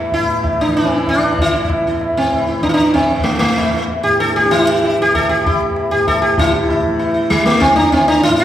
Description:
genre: indian classical, Hindustani.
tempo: 192 BPM.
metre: 4/4.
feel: straight.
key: E raga malkauns.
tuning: A4 = 443 Hz.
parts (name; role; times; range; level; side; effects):
tanpura; drone; 0.0-8.4 s; E2 to E3; -21 LUFS; equal; none.
sitar; melody; 0.1-8.4 s; G3 to A4; -14 LUFS; equal; none.
tabla; percussion; 0.1-8.4 s; none; -20 LUFS; equal; none.
room: wet recital hall reverb, RT60 1.6 s.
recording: heard from further back in the room.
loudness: -12 LUFS.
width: side -11 dB against mid.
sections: 0.0-6.4 A section; 6.4-8.4 B section.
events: speeding up 0.0-8.4.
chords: none.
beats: | 0.12 0.43 0.75 1.07 | 1.38 1.70 2.01 2.33 | 2.64 2.96 3.27 3.58 | 3.90 4.21 4.52 4.83 | 5.14 5.45 5.76 6.08 | 6.38 6.69 7.00 7.31 | 7.62 7.93 8.23.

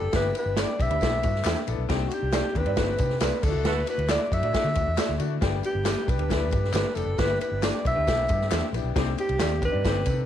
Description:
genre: uptempo 1960s-style soul.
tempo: 136 BPM.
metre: 4/4.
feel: straight.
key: unclear.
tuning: A4 = 440 Hz.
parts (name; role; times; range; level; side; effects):
breathy alto saxophone; melody; 0.0-10.3 s; F#4 to E5; -28 LUFS; equal; none.
bright upright piano; accompaniment; 0.0-10.2 s; G3 to A4; -33 LUFS; left 12 dB; none.
vintage muted fingered electric bass; bass; 0.0-10.2 s; F1 to D3; -28 LUFS; equal; none.
swinging big-band drum kit; drums; 0.1-10.2 s; crash cymbal, kick drum, ride cymbal, snare drum; -28 LUFS; equal; none.
tambourine and handclaps; percussion; 0.1-10.2 s; none; -38 LUFS; left 5 dB; none.
electric guitar through a small old amp; stabs; 0.6-9.8 s; D4 to D5; -35 LUFS; right 12 dB; spring reverb.
clear saxophone section; second line; 3.7-3.8 s; E4 to A4; -34 LUFS; right 11 dB; none.
room: light reverb.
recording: 1960s-style stereo with parts hard left and right, lossy compression artefacts.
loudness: -23 LUFS.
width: side -10 dB against mid.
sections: 0.0-10.3 A section.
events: band accent 3.7-5.4.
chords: 0.1 Em7/G; 1.9 Cmadd9; 3.4 Dadd9; 5.4 G; 7.2 Em7/G; 9.0 Cmadd9.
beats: | 0.13 0.57 1.01 1.45 | 1.89 2.33 2.77 3.21 | 3.65 4.10 4.54 4.98 | 5.42 5.86 6.30 6.75 | 7.19 7.63 8.07 8.52 | 8.96 9.40 9.84.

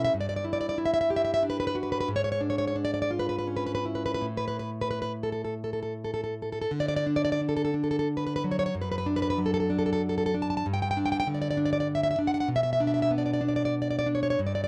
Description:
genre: romantic piece for solo classical guitar.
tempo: 68-102 BPM.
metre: 3/4.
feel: rubato.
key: D major.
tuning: A4 = 440 Hz.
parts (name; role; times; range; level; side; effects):
nylon-string guitar; solo; 0.0-14.7 s; F#2 to A5; -28 LUFS; equal; none.
room: little or no reverb.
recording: dry, close 1970s-style studio recording.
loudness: -28 LUFS.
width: mono.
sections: 0.0-6.7 A section; 6.7-14.7 B section.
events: none.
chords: 0.1 Em7/G; 2.1 E13b9/G#; 4.3 N.C.; 6.7 D; 8.7 D/F#; 10.7 G5; 12.5 Bmadd11.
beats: | 0.12 0.77 1.43 | 2.08 2.74 3.45 | 4.26 5.11 5.93 | 6.71 7.40 8.07 | 8.73 9.38 10.02 | 10.65 11.27 11.87 | 12.48 13.11 13.75 | 14.40.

